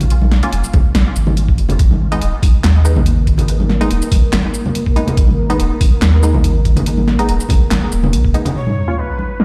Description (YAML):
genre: deep dubstep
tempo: 142 BPM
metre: 4/4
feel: swing 54% on 16ths, half-time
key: unclear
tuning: A4 = 442 Hz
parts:
  - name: soft dub sub bass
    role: bass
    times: 0.0-8.3 s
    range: Eb1 to Eb2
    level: -16 LUFS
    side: equal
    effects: none
  - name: deep house drum kit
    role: drums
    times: 0.0-9.4 s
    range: handclaps, hi-hat, shaker, snare drum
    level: -23 LUFS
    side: equal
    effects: overdrive, low-pass filter on perc, low-pass filter on hats, low-pass filter on snare, low-pass filter on room
  - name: congas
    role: percussion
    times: 0.0-9.3 s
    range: none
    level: -24 LUFS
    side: equal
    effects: dub echo
  - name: filtered dub chord stab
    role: stabs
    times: 0.4-9.0 s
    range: Ab3 to F4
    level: -25 LUFS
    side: equal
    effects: subtle chorus, dub echo
  - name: electronic kick drum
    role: drums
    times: 0.7-8.3 s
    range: none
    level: -14 LUFS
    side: equal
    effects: none
  - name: dark analog pad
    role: sustained chords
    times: 1.8-9.4 s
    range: Bb3 to Bb4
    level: -26 LUFS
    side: equal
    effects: chorus
  - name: breathy bright shakuhachi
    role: melody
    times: 8.6-9.4 s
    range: Bb4 to Db5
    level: -27 LUFS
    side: equal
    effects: dub echo
  - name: sub drop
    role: sound effects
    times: 8.6-9.4 s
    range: none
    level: -22 LUFS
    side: equal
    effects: none
room: light reverb, digital ambience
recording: played on a big sound system in a bare room, large studio reverb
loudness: -14 LUFS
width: mono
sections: 0.0-8.6 A section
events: impact 8.6-9.4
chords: 0.0 Bb5; 1.8 Abm; 8.6 Bbm